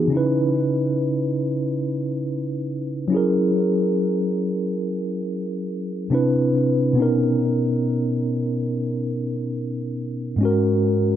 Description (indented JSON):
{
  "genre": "R&B",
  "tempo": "70 BPM",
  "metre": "4/4",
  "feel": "swing 58% on 16ths",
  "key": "C# dorian",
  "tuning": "A4 = 440 Hz",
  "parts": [
    { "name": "mellow tine electric piano", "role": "solo", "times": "0.0-11.2 s", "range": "G#2 to B4", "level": "-20 LUFS", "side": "equal", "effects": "medium stereo tremolo, digital delay" }
  ],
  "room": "light reverb",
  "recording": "none",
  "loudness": "-20 LUFS",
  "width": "side -10 dB against mid",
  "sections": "0.0-11.2 A section",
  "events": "none",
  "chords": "0.1 C#m7; 3.1 F#7; 6.1 Cmaj7; 7.0 Bmaj7; 10.4 G#7sus4"
}